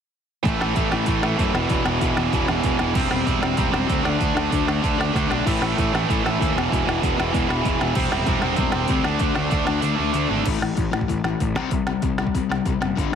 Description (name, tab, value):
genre	punk rock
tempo	192 BPM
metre	4/4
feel	straight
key	unclear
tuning	A4 = 440 Hz
part	distorted electric guitar	riff	0.4-13.2 s	E2 to D4	-24 LUFS	left 12 dB	distortion
part	tight distorted guitar	riff	0.4-10.4 s	E2 to D4	-23 LUFS	right 13 dB	distortion
part	fuzz picked electric bass	bass	0.5-13.1 s	E1 to F#2	-26 LUFS	equal	overdrive
part	organic electronic drum kit	drums	0.5-13.0 s	crash cymbal, hi-hat, kick drum, snare drum	-25 LUFS	equal	none
room	light reverb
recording	heavily compressed radio sound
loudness	-19 LUFS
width	side -8 dB against mid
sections	0.5-10.5 A section; 10.5-13.2 B section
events	drum fill 5.1-5.5; kick and snare drop out 9.8-10.5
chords	0.5 A5; 1.5 E5; 3.0 C/E; 4.0 D5; 5.5 A5; 6.5 E5; 8.0 C/E; 9.0 D5; 10.5 A5; 11.6 C5